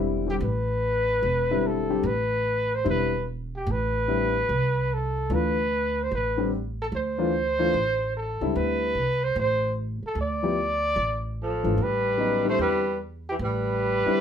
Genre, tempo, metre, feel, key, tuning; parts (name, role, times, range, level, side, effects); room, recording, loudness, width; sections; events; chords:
modal jazz; 148 BPM; 4/4; swing 66% on 8ths; A minor; A4 = 440 Hz
warm baby grand piano; accompaniment; 0.0-14.2 s; C#3 to G4; -27 LUFS; left 5 dB
upright bass; bass; 0.0-14.1 s; E1 to E2; -29 LUFS; right 1 dB
dark trumpet; melody; 0.3-14.2 s; G4 to D5; -25 LUFS; equal
breathy tenor saxophone; second line; 11.4-14.2 s; E3 to A3; -29 LUFS; right 5 dB
moderate studio ambience, RT60 0.5 s; band playing live in one room; -23 LUFS; side -8 dB against mid
0.0-14.2 A section
0.0 Am9; 5.3 D7sus2; 11.8 Am9